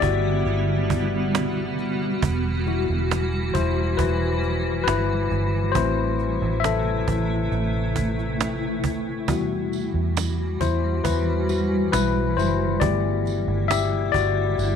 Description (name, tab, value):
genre	pop ballad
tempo	68 BPM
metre	4/4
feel	straight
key	E minor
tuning	A4 = 442 Hz
part	tine electric piano	accompaniment	0.0-14.8 s	G3 to E5	-25 LUFS	left 10 dB	none
part	granular cloud pad	sustained chords	0.0-14.8 s	C3 to F#4	-27 LUFS	right 2 dB	built-in reverb
part	vintage muted fingered electric bass	bass	0.0-14.8 s	E1 to E2	-25 LUFS	right 2 dB	none
part	cajon	drums	0.0-14.7 s	none	-27 LUFS	right 8 dB	none
part	tambourine	percussion	9.3-14.8 s	none	-37 LUFS	right 13 dB	none
room	light reverb, small room ambience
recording	1960s-style stereo with parts hard left and right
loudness	-21 LUFS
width	side -7 dB against mid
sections	0.0-14.8 A section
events	tine electric piano solo 0.0-14.8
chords	0.0 G6; 2.2 Emadd9; 5.8 Amadd9; 9.3 Emadd9; 12.8 G6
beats	0.46 1.34 | 2.22 3.11 3.99 4.87 | 5.75 6.64 7.52 8.40 | 9.28 10.16 11.05 11.93 | 12.81 13.70 14.58